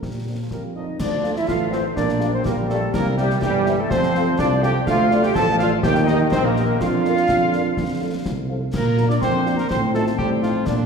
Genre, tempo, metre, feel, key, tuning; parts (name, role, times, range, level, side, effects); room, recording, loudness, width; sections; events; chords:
military-style march for wind band; 124 BPM; 2/4; straight; F major, Bb major from 4.9 s; A4 = 440 Hz
mellow cornet; melody; 0.0-10.9 s; D4 to A5; -29 LUFS; left 2 dB
clear euphonium; second line; 0.0-10.8 s; D3 to D4; -26 LUFS; right 3 dB
mellow tuba; bass; 0.0-10.9 s; G1 to Bb2; -22 LUFS; right 1 dB
concert snare drum, concert bass drum and clash cymbals; drums; 0.0-10.9 s; -28 LUFS; left 1 dB
dark French horn section; accompaniment; 0.3-10.5 s; F3 to F5; -30 LUFS; left 4 dB
large flute ensemble; second line; 0.5-10.7 s; G4 to D6; -28 LUFS; left 4 dB
clear trombone section; sustained chords; 0.5-10.9 s; G3 to A4; -23 LUFS; right 2 dB
wet scoring stage reverb, RT60 2.1 s; heard from further back in the room; -17 LUFS; side -6 dB against mid
1.0-8.7 A section; 8.7-10.9 B section
0.0 Bb; 1.0 Dm; 2.0 Gm7/Bb; 2.9 C; 3.9 F; 4.9 Dm; 5.8 Eb; 6.8 Bb/F; 7.8 F; 8.7 Bb; 9.7 F7/A